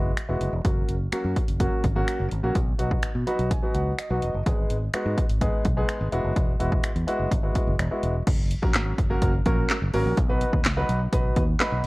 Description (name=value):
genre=dance-pop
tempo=126 BPM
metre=4/4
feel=straight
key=B major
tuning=A4 = 441 Hz
part: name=warm concert grand piano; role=accompaniment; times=0.0-11.9 s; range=F#3 to B5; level=-28 LUFS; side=equal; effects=sidechain pumping
part: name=fingered electric bass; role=bass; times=0.0-11.9 s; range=E1 to B2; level=-27 LUFS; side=equal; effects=sidechain pumping
part: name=house drum kit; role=drums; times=0.2-11.9 s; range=crash cymbal, finger snaps, handclaps, hi-hat, kick drum, snare drum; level=-24 LUFS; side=equal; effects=none
room=digital ambience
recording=worn, warbling old tape, cassette tape, warbly pitch drift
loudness=-22 LUFS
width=side -22 dB against mid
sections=0.0-8.3 A section; 8.3-11.9 B section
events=grand piano fill 3.0-4.5, 11.4-11.9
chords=0.0 Eadd9; 0.6 F#; 2.6 B; 4.5 G#m; 6.1 Eadd9; 8.3 F#; 10.2 B